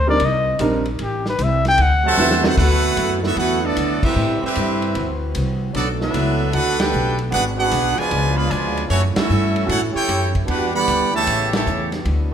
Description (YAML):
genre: jazz, big band swing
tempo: 152 BPM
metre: 4/4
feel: swing 67% on 8ths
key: D major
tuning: A4 = 441 Hz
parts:
  - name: breathy trumpet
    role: melody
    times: 0.0-2.5 s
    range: G4 to G5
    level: -19 LUFS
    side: left 2 dB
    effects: none
  - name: upright bass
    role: bass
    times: 0.0-12.3 s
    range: G#1 to A2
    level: -21 LUFS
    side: left 1 dB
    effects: none
  - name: warm baby grand piano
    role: accompaniment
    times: 0.1-2.6 s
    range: G3 to B4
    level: -22 LUFS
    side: right 3 dB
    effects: none
  - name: vintage drum kit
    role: drums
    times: 0.2-12.2 s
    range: crash cymbal, hi-hat, kick drum, ride cymbal, snare drum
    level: -27 LUFS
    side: equal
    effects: none
  - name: clear trombone section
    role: second line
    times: 2.0-11.9 s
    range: B2 to G4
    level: -23 LUFS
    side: right 4 dB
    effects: none
  - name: brilliant trumpet section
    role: melody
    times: 2.1-11.9 s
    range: A3 to B5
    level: -21 LUFS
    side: right 1 dB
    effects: none
  - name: warm trombone section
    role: sustained chords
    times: 2.6-12.3 s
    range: C3 to B4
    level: -30 LUFS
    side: equal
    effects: none
room: moderate scoring stage reverb, RT60 2.0 s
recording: minimal, uncompressed stereo recording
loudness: -16 LUFS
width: side -8 dB against mid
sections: 0.0-2.6 A section; 2.6-12.3 B section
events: trumpet solo 0.0-2.6; drum fill 2.2-2.6; band accent 4.0, 6.7, 9.1, 11.5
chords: 0.0 Cm9; 1.0 Am; 1.8 D13; 2.6 D69; 4.2 Am9; 5.0 D13; 5.7 Gmaj9; 7.3 G#m7b5; 8.1 C#7b9; 8.9 F#m7; 10.5 Em9; 11.3 A9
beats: 0.20 0.60 | 0.99 1.39 1.79 2.18 | 2.58 2.98 3.37 3.77 | 4.16 4.56 4.96 5.35 | 5.75 6.14 6.54 6.93 | 7.33 7.72 8.11 8.51 | 8.90 9.30 9.69 10.09 | 10.48 10.88 11.27 11.66 | 12.06